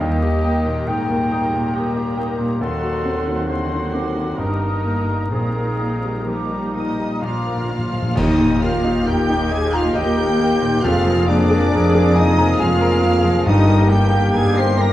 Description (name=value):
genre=classical, romantic movement for piano and orchestra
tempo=62-70 BPM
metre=3/4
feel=rubato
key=Eb major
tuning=A4 = 444 Hz
part: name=clear concert grand piano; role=melody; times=0.0-14.9 s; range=Eb2 to Bb5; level=-21 LUFS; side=equal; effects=none
part: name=warm symphonic violin section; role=melody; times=0.0-14.9 s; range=Bb5 to C7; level=-32 LUFS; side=equal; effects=none
part: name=clear clarinet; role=second line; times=0.0-14.9 s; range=D4 to G5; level=-27 LUFS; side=left 2 dB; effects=none
part: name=dark cor anglais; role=second line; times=0.0-7.8 s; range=Bb4 to G5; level=-31 LUFS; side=right 2 dB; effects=none
part: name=flute section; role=second line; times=0.0-14.9 s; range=D5 to Eb6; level=-29 LUFS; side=equal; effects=none
part: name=rich symphonic violin section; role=second line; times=0.0-14.9 s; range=Bb3 to C6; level=-32 LUFS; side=left 2 dB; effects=none
part: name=rich symphonic viola section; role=accompaniment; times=0.0-14.9 s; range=Eb3 to Bb4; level=-30 LUFS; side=right 1 dB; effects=none
part: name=mellow French horn section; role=sustained chords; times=0.0-14.9 s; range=Bb3 to C5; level=-24 LUFS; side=left 2 dB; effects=none
part: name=warm trombone section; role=sustained chords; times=0.0-14.9 s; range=D3 to Bb3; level=-29 LUFS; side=right 1 dB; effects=none
part: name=rich symphonic cello section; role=bass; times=0.0-14.9 s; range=Eb2 to Bb2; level=-23 LUFS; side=equal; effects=none
part: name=rich symphonic double bass section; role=bass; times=0.0-14.9 s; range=F1 to Eb2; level=-25 LUFS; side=right 1 dB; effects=none
part: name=timpani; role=percussion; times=2.6-9.5 s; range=Bb2 to Eb3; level=-28 LUFS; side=equal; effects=none
part: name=cymbal swell, clash cymbals and concert bass drum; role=percussion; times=5.3-9.9 s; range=none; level=-30 LUFS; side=equal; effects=none
part: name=dark trumpet section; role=stabs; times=8.2-14.9 s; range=G4 to Ab4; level=-27 LUFS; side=equal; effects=none
room=wet scoring stage reverb, RT60 1.7 s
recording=dark, warm production, vinyl crackle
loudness=-16 LUFS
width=side -14 dB against mid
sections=0.0-8.2 A section; 8.2-14.9 B section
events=timpani fill 7.2-8.2; band accent 8.2-9.1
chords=0.0 Eb; 2.6 Ebdim7; 4.4 Eb/G; 5.3 Eb/Bb; 7.2 Bb; 8.2 Eb; 10.8 Bb7/F; 13.5 Eb/G